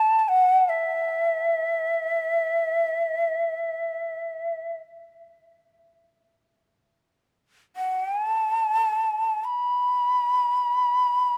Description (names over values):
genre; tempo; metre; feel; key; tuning
japanese traditional, Japanese chamber music; free time; none; none; unclear; A4 = 441 Hz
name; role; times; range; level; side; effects
breathy shakuhachi; solo; 0.0-11.4 s; E5 to B5; -24 LUFS; equal; none
room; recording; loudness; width
moderate plate reverb, RT60 3.4 s; none; -24 LUFS; mono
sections
0.0-6.6 A section; 6.6-11.4 A section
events
none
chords
none